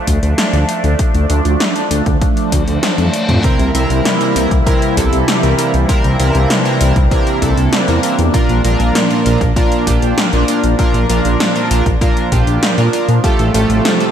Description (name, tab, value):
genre	synthwave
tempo	98 BPM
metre	4/4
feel	straight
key	unclear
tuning	A4 = 439 Hz
part	phased analog pad	sustained chords	0.0-14.1 s	C3 to F4	-18 LUFS	right 1 dB	phaser, chorus, sidechain pumping
part	wide detuned saw bass	bass	0.1-13.8 s	A1 to Bb2	-14 LUFS	equal	chorus
part	80s electronic pad drums	drums	0.1-14.1 s	hi-hat, snare drum, toms	-19 LUFS	left 1 dB	gated reverb on snare and toms, gated reverb
part	electronic kick drum	drums	0.1-13.4 s	none	-16 LUFS	equal	none
part	reverse cymbal	sound effects	2.5-3.4 s	none	-24 LUFS	left 3 dB	none
part	chorused polysynth	stabs	3.4-14.1 s	Bb2 to Bb4	-17 LUFS	right 2 dB	digital delay
room	light reverb, digital ambience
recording	none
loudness	-11 LUFS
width	side -9 dB against mid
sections	0.0-14.1 A section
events	reverse cymbal 2.5-3.4; drum fill 2.8-3.4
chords	0.0 Dm; 3.4 C7; 8.3 Bb; 13.2 Fadd9/A